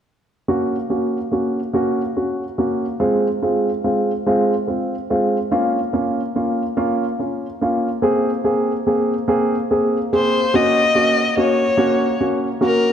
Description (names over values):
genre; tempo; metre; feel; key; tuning
pop; 48 BPM (dotted quarters); 6/8; straight; unclear; A4 = 439 Hz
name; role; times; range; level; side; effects
dark grand piano; accompaniment; 0.5-12.9 s; Ab3 to Ab4; -17 LUFS; equal; none
warm violin; melody; 10.2-12.9 s; Bb4 to Eb5; -17 LUFS; left 3 dB; none
room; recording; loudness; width
moderate concert hall reverb, RT60 2.2 s; dark, warm production; -17 LUFS; side -8 dB against mid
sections
0.5-10.5 A section; 10.5-12.9 B section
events
none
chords
0.5 Gb; 3.0 Fm; 5.5 Db6; 8.0 Abadd9; 10.5 Gb